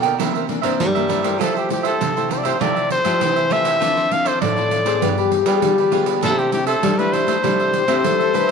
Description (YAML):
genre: samba and choro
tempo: 99 BPM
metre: 4/4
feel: straight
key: C major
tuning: A4 = 439 Hz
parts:
  - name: cavaquinho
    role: accompaniment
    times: 0.0-8.5 s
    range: E4 to G5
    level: -24 LUFS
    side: right 10 dB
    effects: none
  - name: nylon-string guitar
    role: accompaniment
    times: 0.0-8.5 s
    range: G2 to A4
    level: -25 LUFS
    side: left 12 dB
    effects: none
  - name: nylon-string guitar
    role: bass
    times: 0.0-8.5 s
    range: G2 to C4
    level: -23 LUFS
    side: left 1 dB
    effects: none
  - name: pandeiro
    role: percussion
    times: 0.0-8.5 s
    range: none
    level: -25 LUFS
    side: right 14 dB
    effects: none
  - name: clear trumpet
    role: melody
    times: 1.4-8.5 s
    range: G4 to F5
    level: -20 LUFS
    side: left 2 dB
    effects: none
  - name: hollow concert flute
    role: second line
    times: 5.0-8.5 s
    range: G4 to B4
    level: -21 LUFS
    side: left 12 dB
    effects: none
room: moderate plate reverb, RT60 2.6 s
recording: 1960s-style stereo with parts hard left and right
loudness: -16 LUFS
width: side -5 dB against mid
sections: 0.0-8.5 A section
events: none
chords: 0.2 C9; 1.4 Fmaj9; 3.8 Dm9; 5.0 G7b9; 6.2 C69